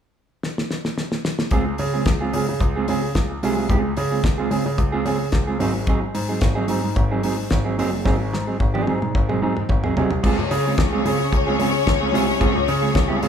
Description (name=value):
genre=disco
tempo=110 BPM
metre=4/4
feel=straight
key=Db major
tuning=A4 = 441 Hz
part: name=damped 70s drum kit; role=drums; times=0.4-13.3 s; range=crash cymbal, hi-hat, kick drum, snare drum, toms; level=-23 LUFS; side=left 1 dB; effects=none
part: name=mellow electric guitar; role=accompaniment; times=1.5-13.3 s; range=Gb3 to Ab4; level=-23 LUFS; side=right 3 dB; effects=spring reverb
part: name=warm concert grand piano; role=bass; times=1.5-13.3 s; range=Gb1 to Db3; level=-23 LUFS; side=equal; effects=none
part: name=rich studio string section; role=second line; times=10.2-13.3 s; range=Db4 to Db5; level=-23 LUFS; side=left 7 dB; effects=none
room=light reverb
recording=band playing live in one room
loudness=-18 LUFS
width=side -8 dB against mid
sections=0.0-1.5 A section; 1.5-10.2 B section; 10.2-13.3 C section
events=drum fill 0.4-1.5, 8.1-10.2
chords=0.0 N.C.; 1.5 Dbmaj7; 5.6 Ab7; 10.2 Dbmaj7